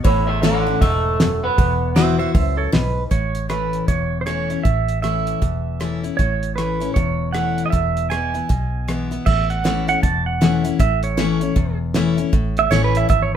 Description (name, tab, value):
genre	honky-tonk and classic country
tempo	156 BPM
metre	4/4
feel	swing 61% on 8ths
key	A major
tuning	A4 = 440 Hz
part	electric guitar through a small old amp	melody	0.0-2.7 s	E4 to F#5	-21 LUFS	right 3 dB	spring reverb
part	picked steel-string acoustic guitar	accompaniment	0.0-13.4 s	E2 to F#4	-23 LUFS	left 5 dB	none
part	cloth-damped thuddy drum kit	drums	0.0-13.2 s	crash cymbal, hi-hat, kick drum, rim click, snare drum	-20 LUFS	equal	none
part	vintage muted fingered electric bass	bass	0.1-13.4 s	E1 to C#2	-24 LUFS	equal	none
part	pedal steel guitar	second line	2.0-13.3 s	A4 to A5	-22 LUFS	right 8 dB	none
room	moderate studio reverb, RT60 0.7 s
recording	minimal, uncompressed stereo recording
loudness	-17 LUFS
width	side -9 dB against mid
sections	0.0-3.1 A section; 3.1-9.3 B section; 9.3-13.4 C section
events	pedal steel guitar solo 3.1-9.3, 9.3-13.4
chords	0.0 A; 1.6 Esus2; 3.1 A; 7.7 E; 9.3 A